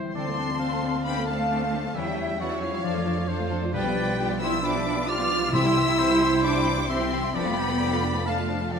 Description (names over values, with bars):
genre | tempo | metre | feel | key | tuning
classical | 133 BPM | 4/4 | rubato | unclear | A4 = 441 Hz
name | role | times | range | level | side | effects
warm oboe | second line | 0.0-8.8 s | B4 to A5 | -33 LUFS | right 1 dB | none
concert harp | arpeggios | 0.0-8.8 s | F2 to D6 | -32 LUFS | left 5 dB | none
warm symphonic violin section | melody | 0.1-8.8 s | F5 to F6 | -30 LUFS | left 4 dB | none
warm symphonic violin section | second line | 0.1-8.8 s | C4 to G5 | -36 LUFS | left 3 dB | none
warm symphonic viola section | accompaniment | 0.1-8.8 s | E3 to F4 | -32 LUFS | right 2 dB | none
rich studio double bass section | bass | 0.1-8.8 s | F1 to F2 | -33 LUFS | right 4 dB | none
flute section | second line | 0.2-8.8 s | C#5 to D6 | -32 LUFS | equal | none
dark French horn section | sustained chords | 0.2-8.8 s | F3 to F4 | -30 LUFS | equal | none
warm symphonic cello section | bass | 0.2-8.8 s | F3 to F4 | -32 LUFS | right 3 dB | none
timpani | percussion | 5.5-6.2 s | C3 | -31 LUFS | left 1 dB | none
room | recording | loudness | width
wet scoring stage reverb, RT60 1.8 s | none | -22 LUFS | side -6 dB against mid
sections
0.0-8.8 A section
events
none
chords
0.2 Dm7; 2.0 C#dim/E; 2.8 Dm/F; 3.7 G7/B; 5.5 C; 7.3 Dm/F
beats
| 0.15 0.60 1.06 1.51 | 1.95 2.40 2.84 3.29 | 3.74 4.19 4.63 5.08 | 5.53 5.99 6.44 6.89 | 7.35 7.80 8.26 8.73